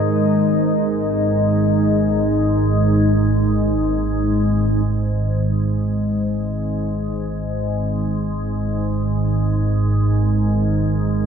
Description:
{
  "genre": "dark ambient drone",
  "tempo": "free time",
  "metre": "none",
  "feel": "none",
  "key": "unclear",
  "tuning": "A4 = 439 Hz",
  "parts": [
    { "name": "deep dark ambient pad", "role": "sustained chords", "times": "0.0-11.3 s", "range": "G#3 to D#5", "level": "-21 LUFS", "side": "right 1 dB", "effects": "chorus, built-in reverb" },
    { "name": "organ-like drone", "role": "drone", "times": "0.0-11.3 s", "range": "G#1 to G#2", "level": "-19 LUFS", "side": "equal", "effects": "ensemble chorus, built-in reverb, phaser" },
    { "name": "bronze singing bowl", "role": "texture", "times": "0.0-4.9 s", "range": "none", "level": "barely audible", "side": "none", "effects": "none" }
  ],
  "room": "moderate spring reverb, RT60 2.3 s",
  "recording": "cassette tape",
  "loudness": "-16 LUFS",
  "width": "side -7 dB against mid",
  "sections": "0.0-4.9 A section; 4.9-11.3 B section",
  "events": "fade-in on ambient pad 4.9-11.3; filter sweep on synth drone 4.9-11.3",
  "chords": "0.0 G#sus2",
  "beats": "free time"
}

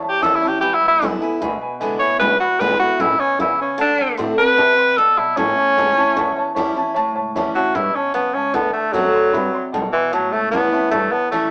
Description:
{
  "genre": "rockabilly",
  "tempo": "151 BPM",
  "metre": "4/4",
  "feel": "straight",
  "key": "unclear",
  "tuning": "A4 = 440 Hz",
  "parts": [
    { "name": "picked steel-string acoustic guitar", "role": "accompaniment", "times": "0.0-11.5 s", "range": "E2 to F#4", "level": "-27 LUFS", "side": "equal", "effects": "none" },
    { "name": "warm upright piano", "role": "accompaniment", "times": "0.0-11.4 s", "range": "B4 to C6", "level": "-27 LUFS", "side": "equal", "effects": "none" },
    { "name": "upright bass", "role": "bass", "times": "0.0-11.5 s", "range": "E1 to C3", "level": "-29 LUFS", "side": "equal", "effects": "none" },
    { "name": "clear tenor saxophone", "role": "melody", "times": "0.1-11.5 s", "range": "E3 to C#5", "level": "-18 LUFS", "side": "equal", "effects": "none" }
  ],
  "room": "moderate stone room reverb, RT60 1.0 s",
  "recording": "rough rehearsal-room recording, small speaker sound",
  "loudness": "-18 LUFS",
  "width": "mono",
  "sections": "0.0-7.0 A section; 7.0-11.5 B section",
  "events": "tenor saxophone solo 0.0-7.0",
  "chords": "0.0 A7; 0.6 E7; 3.8 D7; 5.4 A7; 8.5 D7; 10.1 A7",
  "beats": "0.22 | 0.62 1.02 1.41 1.81 | 2.21 2.60 3.00 3.39 | 3.79 4.18 4.58 4.98 | 5.37 5.77 6.17 6.56 | 6.96 7.35 7.75 8.15 | 8.54 8.94 9.34 9.73 | 10.13 10.53 10.93 11.32"
}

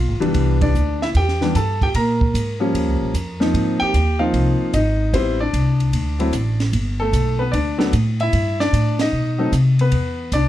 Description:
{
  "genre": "jazz piano trio",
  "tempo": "150 BPM",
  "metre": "4/4",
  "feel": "swing 67% on 8ths",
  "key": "unclear",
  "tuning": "A4 = 441 Hz",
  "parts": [
    { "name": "warm grand piano", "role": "melody", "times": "0.0-10.5 s", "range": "E3 to Bb5", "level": "-20 LUFS", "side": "left 1 dB", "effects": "none" },
    { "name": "upright bass", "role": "bass", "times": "0.0-10.5 s", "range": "E#1 to C3", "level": "-19 LUFS", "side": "equal", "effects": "none" },
    { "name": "compact cocktail drum kit", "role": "drums", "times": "0.2-10.4 s", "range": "hi-hat, kick drum, ride cymbal, snare drum", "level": "-26 LUFS", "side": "right 2 dB", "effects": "none" }
  ],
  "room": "light reverb",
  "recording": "none",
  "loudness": "-16 LUFS",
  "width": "side -13 dB against mid",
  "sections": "0.0-9.9 A section",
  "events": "band accent 0.5, 8.9",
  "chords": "0.3 Cmaj9; 1.9 Bb7(no3); 2.7 Eb9; 3.5 Ab6; 5.1 Am9; 5.9 D5; 6.7 G; 9.1 B(b9); 9.9 E7(no3)",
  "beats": "| 0.34 0.74 1.14 1.54 | 1.94 2.34 2.74 3.14 | 3.54 3.94 4.34 4.74 | 5.14 5.54 5.93 6.33 | 6.73 7.13 7.53 7.93 | 8.33 8.73 9.13 9.53 | 9.92 10.32"
}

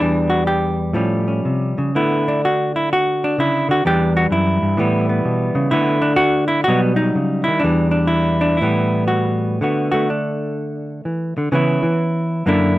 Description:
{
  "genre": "solo jazz",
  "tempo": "126 BPM",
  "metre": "4/4",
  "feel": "swing 66% on 8ths, rubato",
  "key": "D major",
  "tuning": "A4 = 442 Hz",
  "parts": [
    { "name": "hollow-body jazz guitar", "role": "solo", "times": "0.0-12.8 s", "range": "E2 to G4", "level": "-16 LUFS", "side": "equal", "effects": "none" }
  ],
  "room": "light reverb",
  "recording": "close, detailed microphones",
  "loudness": "-16 LUFS",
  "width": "side -16 dB against mid",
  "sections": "0.0-9.6 A section; 9.6-12.8 B section",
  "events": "hollow-body jazz guitar solo 9.6-12.8",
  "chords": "0.0 Em7; 1.0 A7alt; 1.9 Dmaj13; 3.9 Em7; 4.8 A9; 5.7 D5; 6.7 B; 7.6 Em7; 8.6 Asus2; 9.6 D6; 11.5 C#m7",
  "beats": "| 0.00 0.47 0.95 1.45 | 1.94 2.43 2.91 3.39 | 3.86 4.32 4.79 5.26 | 5.72 6.19 6.66 7.15 | 7.63 8.11 8.60 9.09 | 9.59 10.08 10.56 11.04 | 11.52 11.99 12.47"
}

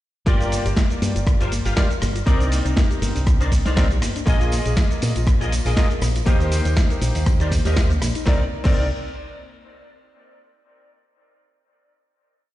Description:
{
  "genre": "nu-disco, nu disco",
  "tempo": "120 BPM",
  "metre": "4/4",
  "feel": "swing 54% on 16ths",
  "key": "C minor",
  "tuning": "A4 = 441 Hz",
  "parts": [
    { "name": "bright electric grand piano", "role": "accompaniment", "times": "0.3-8.8 s", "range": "Bb3 to D6", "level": "-29 LUFS", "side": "equal", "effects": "sidechain pumping, dub echo" },
    { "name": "soft round pluck", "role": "arpeggios", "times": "0.3-8.9 s", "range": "Bb3 to Bb4", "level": "-31 LUFS", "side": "left 4 dB", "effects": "chorus, sidechain pumping, tape echo" },
    { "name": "clean electric guitar", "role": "riff", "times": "0.3-8.9 s", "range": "Eb4 to F5", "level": "-30 LUFS", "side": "left 1 dB", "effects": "ensemble chorus, dub echo" },
    { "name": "fingered electric bass with an envelope filter", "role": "bass", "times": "0.3-8.9 s", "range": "G1 to Bb2", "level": "-22 LUFS", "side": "equal", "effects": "none" },
    { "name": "dusty soul sampler-style drum kit", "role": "drums", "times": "0.3-8.7 s", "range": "cabasa, crash cymbal, hi-hat, rim click, snare drum", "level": "-28 LUFS", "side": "equal", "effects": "small room ambience" },
    { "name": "electronic kick drum", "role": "drums", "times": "0.3-8.7 s", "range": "none", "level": "-18 LUFS", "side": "equal", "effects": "small room ambience" },
    { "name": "tambourine", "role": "percussion", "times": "4.3-8.2 s", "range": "none", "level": "-39 LUFS", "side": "left 1 dB", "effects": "none" }
  ],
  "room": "little or no reverb",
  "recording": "played on a big sound system in a bare room, stone room reverb, nothing above 10.3 kHz",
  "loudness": "-17 LUFS",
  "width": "side -15 dB against mid",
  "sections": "0.3-8.3 drop; 8.3-10.3 final chord",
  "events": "drop 0.3-8.3",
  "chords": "0.3 Gm7; 2.3 Cm9; 4.3 Bb7sus4; 6.3 Eb6; 8.3 Cm9",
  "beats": "| 0.27 0.77 1.27 1.77 | 2.27 2.77 3.27 3.77 | 4.27 4.77 5.27 5.77 | 6.27 6.77 7.27 7.77 | 8.27 8.77"
}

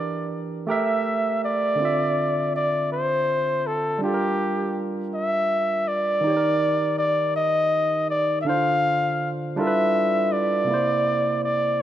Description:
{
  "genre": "R&B",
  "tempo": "54 BPM (dotted quarters)",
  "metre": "6/8",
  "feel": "straight",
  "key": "D minor",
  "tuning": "A4 = 442 Hz",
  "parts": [
    { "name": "warm flugelhorn", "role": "melody", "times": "0.0-11.8 s", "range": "G4 to F5", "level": "-22 LUFS", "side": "left 1 dB", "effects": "plate reverb" },
    { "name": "barky tine electric piano", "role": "accompaniment", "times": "0.0-11.8 s", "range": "C3 to E5", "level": "-26 LUFS", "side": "right 2 dB", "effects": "plate reverb" }
  ],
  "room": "moderate studio reverb, RT60 0.8 s",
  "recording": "none",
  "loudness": "-20 LUFS",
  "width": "side -11 dB against mid",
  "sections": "0.0-1.8 A section; 1.8-11.8 B section",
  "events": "none",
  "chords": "0.0 Em7b5; 0.7 A5; 1.8 Dm9; 4.0 Gm7; 6.2 Ebmaj7; 8.5 Dm7; 9.6 G13; 10.7 C7",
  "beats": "0.68 | 1.79 2.91 | 4.02 5.13 | 6.24 7.35 | 8.46 9.57 | 10.68 11.79"
}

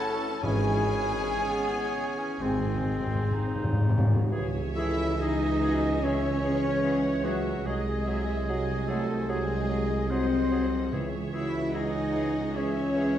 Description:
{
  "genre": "classical, slow romantic movement for symphony orchestra",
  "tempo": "59-75 BPM",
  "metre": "4/4",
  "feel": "rubato",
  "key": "C# minor",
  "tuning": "A4 = 440 Hz",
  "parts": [
    { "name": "warm studio violin section", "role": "melody", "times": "0.0-13.2 s", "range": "F#4 to A5", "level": "-38 LUFS", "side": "left 2 dB", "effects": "none" },
    { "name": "bright clarinet", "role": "second line", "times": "0.0-13.1 s", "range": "B3 to G#4", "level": "-40 LUFS", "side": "left 2 dB", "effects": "none" },
    { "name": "mellow large flute ensemble", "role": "second line", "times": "0.0-13.2 s", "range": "F#4 to E5", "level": "-39 LUFS", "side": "left 1 dB", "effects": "none" },
    { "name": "warm oboe", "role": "second line", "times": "0.0-13.2 s", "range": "F#4 to E5", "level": "-38 LUFS", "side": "right 1 dB", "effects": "none" },
    { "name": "warm studio violin section", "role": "second line", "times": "0.0-13.2 s", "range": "G#4 to G#5", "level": "-41 LUFS", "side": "left 2 dB", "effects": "none" },
    { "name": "warm bassoon", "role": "accompaniment", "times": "0.0-13.1 s", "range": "E3 to A3", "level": "-39 LUFS", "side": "equal", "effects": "none" },
    { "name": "warm studio viola section", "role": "accompaniment", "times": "0.0-13.2 s", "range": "B#2 to E5", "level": "-37 LUFS", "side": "right 2 dB", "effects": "none" },
    { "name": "warm trumpet", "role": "stabs", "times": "0.0-3.3 s", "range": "G#4 to A4", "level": "-35 LUFS", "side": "right 2 dB", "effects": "none" },
    { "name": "dark French horn section", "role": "sustained chords", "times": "0.4-13.2 s", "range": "F#3 to E4", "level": "-30 LUFS", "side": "left 3 dB", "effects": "none" },
    { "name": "mellow trombone section", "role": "sustained chords", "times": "0.4-13.2 s", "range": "G#2 to G#3", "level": "-37 LUFS", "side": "right 2 dB", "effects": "none" },
    { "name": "mellow tuba", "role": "bass", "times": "0.4-13.2 s", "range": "G#1 to C#2", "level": "-36 LUFS", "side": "right 3 dB", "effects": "none" },
    { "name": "warm studio cello section", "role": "bass", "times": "0.4-13.2 s", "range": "G#2 to E4", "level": "-37 LUFS", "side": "right 1 dB", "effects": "none" },
    { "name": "warm studio double bass section", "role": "bass", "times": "0.4-13.2 s", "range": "G#1 to C#2", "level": "-34 LUFS", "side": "right 2 dB", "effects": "none" },
    { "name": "timpani", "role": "percussion", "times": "0.4-4.2, 10.9-12.1 s", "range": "G#2 to C#3", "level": "-29 LUFS", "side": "left 1 dB", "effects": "none" }
  ],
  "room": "wet scoring stage reverb, RT60 1.5 s",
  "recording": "dark, warm production",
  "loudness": "-25 LUFS",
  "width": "side -11 dB against mid",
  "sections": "0.0-4.3 A section; 4.3-13.2 B section",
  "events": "timpani fill 2.4-4.3",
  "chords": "0.4 C#m/G#; 2.4 G#; 4.3 C#m; 7.7 G#7/B#; 10.9 C#m",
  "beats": "| 0.44 1.45 2.42 3.35 | 4.31 5.20 6.03 6.84 | 7.66 8.48 9.29 10.11 | 10.93 11.74 12.56"
}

